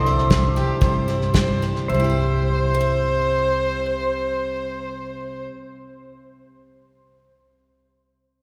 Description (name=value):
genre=honky-tonk and classic country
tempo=106-122 BPM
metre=4/4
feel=straight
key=C major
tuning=A4 = 444 Hz
part: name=bright upright piano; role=melody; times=0.0-1.3 s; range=C6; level=-30 LUFS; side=equal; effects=none
part: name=picked steel-string acoustic guitar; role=accompaniment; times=0.0-6.4 s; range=C3 to E5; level=-30 LUFS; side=equal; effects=none
part: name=pedal steel guitar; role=sustained chords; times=0.0-5.5 s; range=C5 to E5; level=-33 LUFS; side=equal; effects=none
part: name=upright bass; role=bass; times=0.0-5.5 s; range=C2 to G2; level=-27 LUFS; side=equal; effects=none
part: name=cloth-damped thuddy drum kit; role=drums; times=0.1-1.8 s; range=hi-hat, kick drum, snare drum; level=-25 LUFS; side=equal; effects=none
part: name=dark fiddle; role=second line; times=0.6-5.5 s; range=G4 to C5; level=-26 LUFS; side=equal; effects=none
room=wet cathedral reverb, RT60 4.4 s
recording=recorded in a church or concert hall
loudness=-21 LUFS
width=mono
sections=0.0-1.9 A section; 1.9-6.4 B section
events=slowing down 0.0-1.9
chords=0.0 C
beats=0.30 0.81 1.34 | 1.90 2.46 3.03 3.60 | 4.17 4.73 5.30 5.87